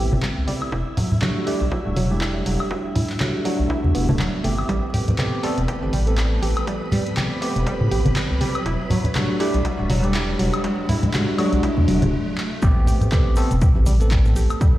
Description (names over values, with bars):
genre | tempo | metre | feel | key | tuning
deep house | 121 BPM | 4/4 | swing 57% on 16ths | A dorian | A4 = 440 Hz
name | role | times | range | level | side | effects
analog pluck | arpeggios | 0.0-14.7 s | F#3 to G4 | -28 LUFS | right 2 dB | chorus, phaser, cassette tape, sidechain pumping, tape echo
bell-like tine electric piano | stabs | 0.0-14.8 s | G3 to A4 | -26 LUFS | equal | phaser, sidechain pumping, low-pass filter, tape echo
organ-like FM bass | bass | 0.0-14.5 s | D1 to A2 | -21 LUFS | equal | sidechain pumping
riser | sound effects | 0.9-12.6 s | none | -32 LUFS | left 1 dB | none
soft string machine | texture | 0.0-12.1 s | E4 to B5 | -36 LUFS | equal | ensemble chorus, sidechain pumping
congas | percussion | 0.1-14.3 s | none | -23 LUFS | equal | sidechain pumping on perc
electronic kick drum | drums | 0.2-14.7 s | none | -20 LUFS | equal | high-pass filter on kick
punchy analog drum machine | drums | 0.2-14.7 s | handclaps, hi-hat, woodblock | -30 LUFS | left 1 dB | none
cabasa | percussion | 12.6-14.7 s | none | -41 LUFS | left 2 dB | none
room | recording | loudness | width
moderate echo chamber reverb, RT60 2.0 s | played on a big sound system in a bare room, large studio reverb, vinyl crackle | -18 LUFS | side -15 dB against mid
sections
0.0-12.6 A section; 12.6-14.8 B section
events
build-up 0.0-12.6; riser 0.9-12.6; stop 12.1-12.6; drum fill 12.4; drop 12.6-14.8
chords
0.0 Am9; 0.7 Em11; 4.7 Am9; 8.7 Em11; 12.6 Am9